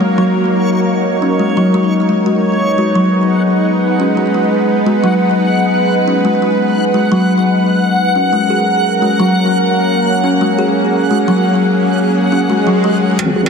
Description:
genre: half-time drum and bass.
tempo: 173 BPM.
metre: 4/4.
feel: swing 57% on 16ths, half-time.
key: unclear.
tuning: A4 = 442 Hz.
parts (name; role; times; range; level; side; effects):
bowed-like drone; sustained chords; 0.0-13.5 s; F#3 to B4; -16 LUFS; right 2 dB; built-in reverb.
kalimba; arpeggios; 0.0-13.5 s; F#3 to G#4; -14 LUFS; left 2 dB; vintage 12-bit sampler grit, low-pass filter, digital delay.
backwards swelling texture; texture; 0.0-13.5 s; C#5 to F#5; -18 LUFS; equal; built-in reverb.
swell and riser; sound effects; 12.6-13.5 s; none; -19 LUFS; left 1 dB; none.
deep soft wobble bass; bass; 13.2-13.5 s; G#1; -17 LUFS; right 1 dB; chorus, high-pass filter.
electronic hi-hat and struck metal; drums; 13.2-13.5 s; none; -20 LUFS; right 5 dB; none.
room: moderate lush hall reverb, RT60 2.2 s.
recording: heavily compressed radio sound, multiband compression.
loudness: -11 LUFS.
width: side -6 dB against mid.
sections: 0.0-13.2 A section.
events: swell 12.6-13.2.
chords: 0.0 F#; 2.1 G#m; 7.6 F#.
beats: 0.01 0.36 | 0.70 1.05 1.40 1.74 | 2.09 2.44 2.78 3.13 | 3.48 3.82 4.17 4.52 | 4.86 5.21 5.56 5.91 | 6.25 6.60 6.95 7.29 | 7.64 7.99 8.33 8.68 | 9.03 9.37 9.72 10.07 | 10.41 10.76 11.11 11.45 | 11.80 12.15 12.49 12.84 | 13.19.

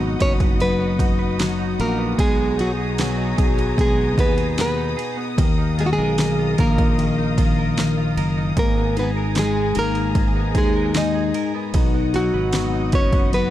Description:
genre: pop ballad.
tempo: 76 BPM.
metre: 4/4.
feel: straight.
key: unclear.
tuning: A4 = 439 Hz.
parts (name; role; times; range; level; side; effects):
nylon-string guitar; melody; 0.0-13.5 s; F#3 to Eb5; -24 LUFS; right 1 dB; none.
mellow tine electric piano; accompaniment; 0.0-13.5 s; Eb3 to Ab4; -24 LUFS; left 5 dB; analog chorus.
warm symphonic string section; sustained chords; 0.0-13.5 s; F#4 to D#6; -31 LUFS; left 2 dB; none.
direct-recorded clean electric guitar; arpeggios; 0.0-13.5 s; Ab2 to B4; -31 LUFS; right 7 dB; wide subtle chorus, tape echo.
sustaining fretless electric bass; bass; 0.0-13.5 s; F#1 to Eb2; -24 LUFS; equal; none.
deep house drum kit; drums; 0.2-13.5 s; kick drum, ride cymbal, snare drum; -21 LUFS; equal; overdrive.
room: little or no reverb.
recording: dark, warm production.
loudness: -17 LUFS.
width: side -13 dB against mid.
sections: 0.0-13.5 A section.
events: none.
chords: 0.0 B; 2.2 Abmadd9/Cb; 5.4 Ebsus2; 8.6 Abmadd9; 11.7 B.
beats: 0.60 1.39 | 2.19 2.98 3.78 4.57 | 5.38 6.18 6.98 7.78 | 8.57 9.36 10.15 10.95 | 11.74 12.53 13.32.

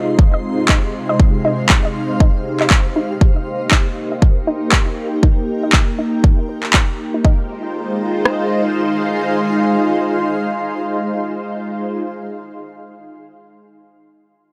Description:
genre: deep house.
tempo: 119 BPM.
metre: 4/4.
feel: swing 60% on 16ths.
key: F minor.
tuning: A4 = 439 Hz.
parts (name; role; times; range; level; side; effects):
soft string machine; sustained chords; 0.0-12.0 s; C3 to C5; -23 LUFS; equal; phaser, ensemble chorus, sidechain pumping.
analog pluck; arpeggios; 0.0-7.5 s; Eb4 to Eb5; -24 LUFS; equal; chorus, sidechain pumping, tape echo.
granular cloud pad; texture; 0.0-12.0 s; C3 to C6; -27 LUFS; equal; built-in reverb, sidechain pumping.
house drum kit; drums; 0.2-8.4 s; kick drum, rim click; -15 LUFS; equal; none.
electronic handclaps; drums; 0.7-6.9 s; none; -19 LUFS; equal; none.
room: light reverb, small room ambience.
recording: none.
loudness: -17 LUFS.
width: mono.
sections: 0.0-7.2 A section; 7.2-11.3 B section.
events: fade-out on ambient pad 0.0-7.2; filter sweep on string machine 0.0-7.2.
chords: 0.0 Ab6/C; 3.2 Cm7; 7.2 Fm7.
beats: 0.19 0.69 | 1.20 1.70 2.20 2.71 | 3.21 3.72 4.22 4.72 | 5.23 5.73 6.24 6.74 | 7.25 7.75 8.25 8.76 | 9.26 9.77 10.27 10.77.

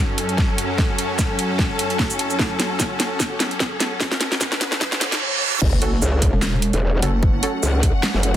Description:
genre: heavy wobble dubstep.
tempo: 149 BPM.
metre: 4/4.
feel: swing 55% on 16ths, half-time.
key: F# minor.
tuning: A4 = 440 Hz.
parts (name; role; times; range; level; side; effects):
supersaw chords; sustained chords; 0.0-8.4 s; F#2 to A4; -28 LUFS; equal; sidechain pumping, low-pass filter.
riser, reverse cymbal and sub drop; sound effects; 1.9-7.2 s; none; -27 LUFS; right 2 dB; none.
bright studio string section; texture; 0.0-8.4 s; C#4 to F#5; -28 LUFS; left 3 dB; sidechain pumping.
dubstep drum kit; drums; 0.2-8.4 s; crash cymbal, handclaps, hi-hat, shaker, snare drum; -22 LUFS; equal; none.
electronic kick drum; drums; 0.4-8.4 s; none; -21 LUFS; equal; none.
growl bass; bass; 5.6-8.4 s; E1 to C#2; -19 LUFS; equal; chorus, overdrive.
pulsing pluck wobble bass; bass; 5.7-7.4 s; E1 to F#1; -20 LUFS; equal; chorus, overdrive.
orchestra-hit-like synth stab; stabs; 5.8-7.5 s; C#4 to A4; -27 LUFS; right 2 dB; built-in reverb, cassette tape, digital delay.
room: little or no reverb.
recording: dense, heavily limited modern master, high-pass filter.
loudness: -18 LUFS.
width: side -11 dB against mid.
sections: 0.0-5.6 A section; 5.6-8.4 B section.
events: build-up 0.0-5.6; drum fill 0.0-5.2; filter sweep 0.0-5.6; riser 1.9-5.2; reverse cymbal 4.8-5.6; drop 5.6-8.4; impact 5.6-7.2.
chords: 0.0 F#m.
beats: 0.38 | 0.78 1.19 1.59 1.99 | 2.39 2.80 3.20 3.60 | 4.00 4.41 4.81 5.21 | 5.62 6.02 6.42 6.82 | 7.23 7.63 8.03.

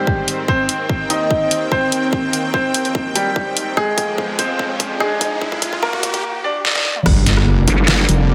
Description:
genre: heavy wobble dubstep.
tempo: 146 BPM.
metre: 4/4.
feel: half-time.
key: unclear.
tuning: A4 = 441 Hz.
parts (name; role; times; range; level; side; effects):
bright baby grand piano; melody; 0.0-7.0 s; G3 to Eb5; -22 LUFS; equal; digital delay.
supersaw pad; sustained chords; 0.0-8.3 s; Eb2 to G5; -26 LUFS; equal; sidechain pumping.
electronic kick drum; drums; 0.1-7.1 s; none; -25 LUFS; equal; none.
dubstep drum kit; drums; 0.3-8.2 s; crash cymbal, handclaps, hi-hat, rim click, snare drum, toms; -20 LUFS; equal; none.
riser and impact; sound effects; 2.8-8.3 s; none; -29 LUFS; equal; none.
wobble bass; bass; 7.1-8.3 s; F1 to G1; -16 LUFS; equal; chorus, overdrive.
vowel-sweep wobble bass; bass; 7.7-8.1 s; G1; -17 LUFS; equal; chorus, overdrive.
room: moderate plate reverb, RT60 1.0 s, digital ambience.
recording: high-pass filter.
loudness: -18 LUFS.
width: mono.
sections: 0.0-7.1 A section; 7.1-8.3 B section.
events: build-up 0.0-7.1; filter sweep 0.0-7.1; drum fill 0.5-6.2, 6.6-7.1; riser 2.8-6.2; drop 7.1-8.3; impact 7.1-8.3.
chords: 0.5 Eb6; 3.8 Fmadd9; 7.1 Gm.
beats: 0.07 | 0.48 0.90 1.31 1.72 | 2.13 2.54 2.95 3.36 | 3.77 4.18 4.59 5.00 | 5.42 5.83 6.24 6.65 | 7.06 7.47 7.88 8.29.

